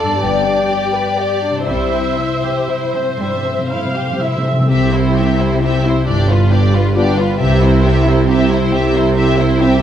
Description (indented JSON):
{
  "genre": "classical, slow romantic movement for symphony orchestra",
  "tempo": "39-46 BPM (dotted quarters)",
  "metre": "6/8",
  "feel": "rubato",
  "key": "C major",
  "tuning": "A4 = 440 Hz",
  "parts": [
    { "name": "warm symphonic violin section", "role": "melody", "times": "0.0-9.8 s", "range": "B4 to E5", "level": "-23 LUFS", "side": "left 3 dB", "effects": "none" },
    { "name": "mellow hollow flute section", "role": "second line", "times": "0.0-4.2 s", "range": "C5 to A5", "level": "-21 LUFS", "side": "left 3 dB", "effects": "none" },
    { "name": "warm symphonic violin section", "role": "second line", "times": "0.0-9.8 s", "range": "G3 to B4", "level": "-23 LUFS", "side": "left 1 dB", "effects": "none" },
    { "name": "rich symphonic viola section", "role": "accompaniment", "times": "0.0-9.8 s", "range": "C4 to F5", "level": "-23 LUFS", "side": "right 2 dB", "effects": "none" },
    { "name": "concert harp", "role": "arpeggios", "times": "0.0-9.8 s", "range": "F2 to G5", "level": "-20 LUFS", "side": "left 6 dB", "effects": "none" },
    { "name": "rich symphonic cello section", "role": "bass", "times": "0.2-9.8 s", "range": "G2 to C3", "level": "-19 LUFS", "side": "right 3 dB", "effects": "none" },
    { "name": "rich symphonic double bass section", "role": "bass", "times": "0.2-9.8 s", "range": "G1 to C2", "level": "-19 LUFS", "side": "right 3 dB", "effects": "none" },
    { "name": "timpani", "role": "percussion", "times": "1.7-4.7 s", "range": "C3", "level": "-22 LUFS", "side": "left 1 dB", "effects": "none" },
    { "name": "warm tuba", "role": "bass", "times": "4.7-9.8 s", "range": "G1 to C2", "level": "-20 LUFS", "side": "right 4 dB", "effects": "none" },
    { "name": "dark French horn section", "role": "sustained chords", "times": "5.6-9.8 s", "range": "B3 to F4", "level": "-20 LUFS", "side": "left 1 dB", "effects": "none" }
  ],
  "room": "moderate scoring stage reverb, RT60 1.7 s",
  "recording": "none",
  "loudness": "-12 LUFS",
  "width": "side -10 dB against mid",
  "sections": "0.0-4.7 A section; 4.7-9.8 B section",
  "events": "timpani fill 1.7-4.7",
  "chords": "0.2 G; 1.7 C; 6.1 G7; 7.4 C",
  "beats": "0.21 | 1.69 3.19 | 4.70 6.08 | 7.40 8.72"
}